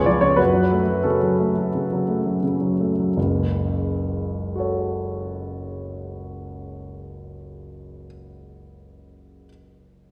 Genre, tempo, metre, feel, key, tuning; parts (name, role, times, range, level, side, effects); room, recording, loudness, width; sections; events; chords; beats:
classical, romantic character piece for solo piano; 87 BPM; 4/4; rubato; F# minor; A4 = 440 Hz
warm baby grand piano; solo; 0.0-10.1 s; F#1 to D5; -23 LUFS; equal
wet scoring stage reverb, RT60 1.9 s; recorded in a church or concert hall; -22 LUFS; mono
0.0-3.2 A section; 3.2-8.7 B section
slowing down 0.0-3.2
0.4 F#m
| 0.39 1.05 1.74 2.43 | 3.17 3.85 4.54 5.24 | 5.92 6.60 7.29 7.99